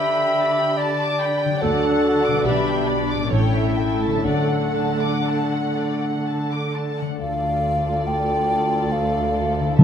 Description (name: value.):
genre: classical, slow romantic movement for symphony orchestra.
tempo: 59-73 BPM.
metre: 3/4.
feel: rubato.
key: D major.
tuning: A4 = 439 Hz.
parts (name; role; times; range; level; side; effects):
muted studio violin section; melody; 0.0-9.8 s; C#5 to B5; -30 LUFS; left 2 dB; none.
dark clarinet; second line; 0.0-6.7 s; D4 to E5; -23 LUFS; left 1 dB; none.
muted studio violin section; second line; 0.0-9.8 s; A4 to D6; -29 LUFS; left 2 dB; none.
muted studio viola section; accompaniment; 0.0-9.8 s; A3 to A4; -27 LUFS; right 3 dB; none.
concert harp; arpeggios; 0.0-9.8 s; A2 to D5; -28 LUFS; left 9 dB; none.
muted studio cello section; bass; 0.0-9.8 s; D2 to D3; -28 LUFS; right 3 dB; none.
muted studio double bass section; bass; 1.6-9.8 s; A1 to D2; -26 LUFS; right 2 dB; none.
mellow hollow concert flute; second line; 7.2-9.8 s; F5 to A5; -22 LUFS; equal; none.
warm French horn section; sustained chords; 7.2-9.8 s; A3 to A4; -28 LUFS; left 3 dB; none.
timpani; percussion; 9.8 s; D3; -7 LUFS; equal; none.
room: moderate recital hall reverb, RT60 1.3 s.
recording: close, detailed microphones.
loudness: -19 LUFS.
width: side -8 dB against mid.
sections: 0.0-7.2 A section; 7.2-9.8 B section.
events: none.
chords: 0.0 G/D; 1.6 D; 2.5 G/B; 3.3 A7; 4.3 D; 7.2 Dm.